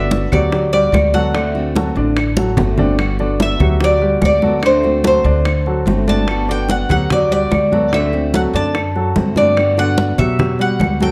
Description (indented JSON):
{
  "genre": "latin, Cuban son and guajira",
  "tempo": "146 BPM",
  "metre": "4/4",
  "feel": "straight",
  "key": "G major",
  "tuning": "A4 = 440 Hz",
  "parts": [
    { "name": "Cuban tres", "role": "melody", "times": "0.0-11.1 s", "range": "C5 to A5", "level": "-20 LUFS", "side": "equal", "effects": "none" },
    { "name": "fingerpicked steel-string acoustic guitar", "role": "accompaniment", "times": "0.0-11.1 s", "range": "D3 to F#4", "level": "-26 LUFS", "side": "equal", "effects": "none" },
    { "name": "warm baby grand piano", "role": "arpeggios", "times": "0.0-11.1 s", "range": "D3 to D5", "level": "-22 LUFS", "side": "equal", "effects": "none" },
    { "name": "upright bass", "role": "bass", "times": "0.0-11.1 s", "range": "G1 to B2", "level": "-22 LUFS", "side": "equal", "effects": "none" },
    { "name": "bongos", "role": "percussion", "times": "0.1-11.1 s", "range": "none", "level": "-29 LUFS", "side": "equal", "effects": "none" },
    { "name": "congas", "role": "percussion", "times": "0.1-11.1 s", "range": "none", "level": "-23 LUFS", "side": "equal", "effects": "none" },
    { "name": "claves", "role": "percussion", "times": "0.3-11.0 s", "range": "none", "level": "-31 LUFS", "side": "equal", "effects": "none" }
  ],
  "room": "moderate large studio reverb, RT60 1.3 s",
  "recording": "dark, warm production",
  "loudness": "-15 LUFS",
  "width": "mono",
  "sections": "0.0-3.0 A section; 3.0-11.1 A section",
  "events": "drum fill 2.4-3.0",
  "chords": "0.0 Gmaj7; 1.3 D7; 3.0 Gmaj7; 4.6 D7; 6.3 Gmaj7; 7.9 D7; 9.6 Gmaj7",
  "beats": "0.11 0.52 0.94 | 1.35 1.76 2.17 2.58 | 2.99 3.40 3.81 4.22 | 4.63 5.04 5.45 5.87 | 6.28 6.69 7.10 7.51 | 7.92 8.34 8.75 9.16 | 9.57 9.98 10.39 10.81"
}